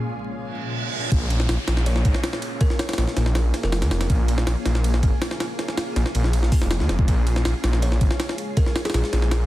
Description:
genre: drum and bass, jungle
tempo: 161 BPM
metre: 4/4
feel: straight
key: Bb minor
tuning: A4 = 440 Hz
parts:
  - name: granular cloud pad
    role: sustained chords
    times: 0.0-9.5 s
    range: Bb2 to Ab4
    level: -31 LUFS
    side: equal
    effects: built-in reverb
  - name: reverse cymbal and downlifter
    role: sound effects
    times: 0.5-4.1 s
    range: none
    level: -32 LUFS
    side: right 3 dB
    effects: none
  - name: detuned saw bass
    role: bass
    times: 1.1-9.5 s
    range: F1 to Eb2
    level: -21 LUFS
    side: equal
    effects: none
  - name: jungle sampler-style drum kit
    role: drums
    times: 1.1-9.4 s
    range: hi-hat, kick drum, ride cymbal, snare drum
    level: -23 LUFS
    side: equal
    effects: small room ambience
  - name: kalimba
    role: melody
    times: 1.9-4.0, 7.8-9.0 s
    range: Ab4 to Db5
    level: -34 LUFS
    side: left 1 dB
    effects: dub echo
room: little or no reverb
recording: dense, heavily limited modern master, vinyl crackle, faint mains hum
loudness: -20 LUFS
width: side -15 dB against mid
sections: 0.0-1.1 A section; 1.1-9.5 B section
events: break 0.0-1.1; reverse cymbal 0.5-1.1; drop 1.1-9.5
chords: 0.0 Bbm7

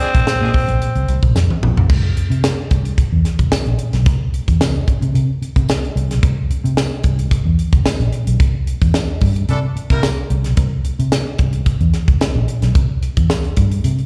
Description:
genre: funk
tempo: 111 BPM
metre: 4/4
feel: straight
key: unclear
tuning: A4 = 440 Hz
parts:
  - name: growling tenor saxophone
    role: melody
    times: 0.0-1.3 s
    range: C4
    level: -22 LUFS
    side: equal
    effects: plate reverb, slapback echo
  - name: clear horn section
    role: second line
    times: 0.0-0.5, 9.5-10.1 s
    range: E3 to Bb4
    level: -29 LUFS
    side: equal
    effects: plate reverb, slapback echo
  - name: crisp fusion drum kit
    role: drums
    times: 0.0-14.1 s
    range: crash cymbal, hi-hat, kick drum, snare drum, toms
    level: -19 LUFS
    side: equal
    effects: none
  - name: vintage muted fingered electric bass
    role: bass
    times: 0.1-14.0 s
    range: Bb1 to C3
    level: -19 LUFS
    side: equal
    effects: none
  - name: tambourine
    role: percussion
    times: 0.3-13.4 s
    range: none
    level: -36 LUFS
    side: equal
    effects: slapback echo
room: little or no reverb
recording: live gig heard through the venue's PA, recital hall reverb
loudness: -17 LUFS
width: mono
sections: 0.0-1.9 A section; 1.9-14.1 B section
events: drum fill 1.4-1.9; band accent 8.4-10.6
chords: 0.0 Bbsus2; 1.9 N.C.

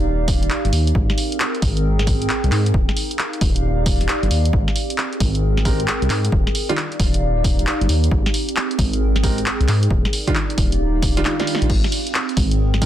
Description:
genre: UK garage, two-step garage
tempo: 134 BPM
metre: 4/4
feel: swing 65% on 16ths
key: Ab lydian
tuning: A4 = 440 Hz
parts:
  - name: dark detuned saw bass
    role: bass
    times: 0.0-12.9 s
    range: Eb1 to Ab2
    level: -19 LUFS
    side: equal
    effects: tube saturation
  - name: warbly tape-like pad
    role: texture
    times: 0.0-12.9 s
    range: C4 to G5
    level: -24 LUFS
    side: right 1 dB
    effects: chorus, built-in reverb, sidechain pumping
  - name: electronic kick drum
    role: drums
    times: 0.3-12.9 s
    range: none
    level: -21 LUFS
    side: equal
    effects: none
  - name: punchy analog drum machine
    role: drums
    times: 0.3-12.9 s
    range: crash cymbal, handclaps, hi-hat, snare drum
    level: -23 LUFS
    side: equal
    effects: none
  - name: clear concert grand piano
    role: stabs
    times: 5.7-12.9 s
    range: Eb3 to Bb4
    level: -25 LUFS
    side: right 2 dB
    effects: tape echo
room: light reverb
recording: dense, heavily limited modern master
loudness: -16 LUFS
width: side -12 dB against mid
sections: 0.0-12.9 A section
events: drum fill 11.2-11.7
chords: 0.0 Ebmaj9; 1.0 Abmaj9; 2.7 Ebmaj9; 4.5 Abmaj9; 6.3 Ebmaj9; 8.1 Abmaj9; 9.9 Ebmaj9; 11.7 Abmaj9

